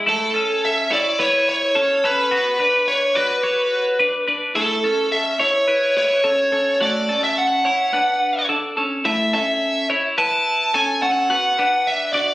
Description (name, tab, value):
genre	indie pop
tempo	107 BPM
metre	4/4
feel	straight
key	A major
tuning	A4 = 440 Hz
part	twelve-string electric guitar	arpeggios	0.0-12.3 s	A3 to D5	-21 LUFS	left 1 dB	slapback echo
part	bluesy overdriven lead guitar	melody	0.1-12.3 s	A4 to A5	-18 LUFS	equal	distortion
room	moderate studio reverb, RT60 0.8 s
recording	recorded on a phone in the room, studio reverb, compression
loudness	-16 LUFS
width	side -16 dB against mid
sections	0.1-12.3 A section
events	none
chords	0.1 A; 2.3 Bm; 4.6 A; 6.8 D; 9.1 A; 11.3 Bm